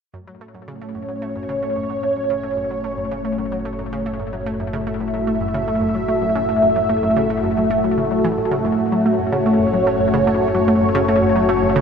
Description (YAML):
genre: ambient, sequencer-driven space music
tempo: 111 BPM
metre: 4/4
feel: straight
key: F# minor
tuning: A4 = 440 Hz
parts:
  - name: lush unison pad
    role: sustained chords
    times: 0.8-11.8 s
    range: A3 to E5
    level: -18 LUFS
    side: equal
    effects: chorus, phaser
  - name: analog pluck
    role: riff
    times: 0.1-11.8 s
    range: F#2 to A3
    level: -25 LUFS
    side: right 2 dB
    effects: chorus, ping-pong delay
  - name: fat analog bass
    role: bass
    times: 0.1-11.8 s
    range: F#1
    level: -31 LUFS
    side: equal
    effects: none
room: moderate plate reverb, RT60 3.0 s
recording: none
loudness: -17 LUFS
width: side -6 dB against mid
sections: 0.1-11.8 A section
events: fade-in on synth arpeggio sound 0.1-11.8; fade-in on analog synth bass 0.1-11.8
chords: 0.1 F#m